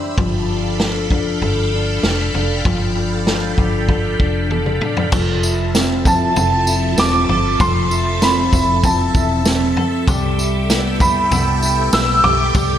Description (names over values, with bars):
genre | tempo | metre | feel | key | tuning
dream pop | 97 BPM | 4/4 | straight | unclear | A4 = 441 Hz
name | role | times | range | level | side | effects
phased string machine | sustained chords | 0.0-12.8 s | F3 to E6 | -24 LUFS | right 1 dB | ensemble chorus, phaser
electric guitar at the edge of break-up | arpeggios | 0.0-12.8 s | E3 to A4 | -21 LUFS | left 2 dB | analog chorus, tape echo
vintage muted fingered electric bass | bass | 0.2-12.8 s | E1 to C2 | -21 LUFS | equal | none
vintage drum kit | drums | 0.2-12.7 s | crash cymbal, kick drum, snare drum, tambourine, toms | -19 LUFS | equal | none
felt-muted upright piano | melody | 6.1-12.8 s | A5 to E6 | -18 LUFS | right 2 dB | tape echo
room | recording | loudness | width
moderate lush hall reverb, RT60 2.0 s | big arena sound | -14 LUFS | side -10 dB against mid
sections
0.0-5.1 A section; 5.1-12.8 B section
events
drum fill 4.5-5.1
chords
0.2 G9; 5.1 Fmaj7; 10.1 Cmaj7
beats
| 0.18 0.80 1.41 2.03 | 2.65 3.27 3.89 4.51 | 5.13 5.74 6.36 6.98 | 7.60 8.22 8.84 9.46 | 10.07 10.69 11.31 11.93 | 12.55